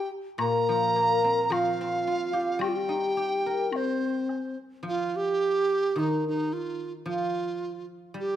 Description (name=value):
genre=chinese traditional, Chinese chamber ensemble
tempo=108 BPM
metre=2/4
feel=rubato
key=unclear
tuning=A4 = 441 Hz
part: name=hollow large dizi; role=melody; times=0.0-8.4 s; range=Eb4 to Bb5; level=-27 LUFS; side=right 2 dB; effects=none
part: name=breathy mellow low xiao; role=second line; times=0.0-4.6 s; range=C4 to Bb4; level=-29 LUFS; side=left 3 dB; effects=none
part: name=guzheng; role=accompaniment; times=0.4-8.4 s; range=Bb2 to Bb4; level=-32 LUFS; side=left 1 dB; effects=none
part: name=woodblock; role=percussion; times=0.4-4.4 s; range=none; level=-37 LUFS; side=left 4 dB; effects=none
room=moderate recital hall reverb, RT60 1.7 s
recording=none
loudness=-25 LUFS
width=side -11 dB against mid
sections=0.0-4.8 A section; 4.8-8.4 B section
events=none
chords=none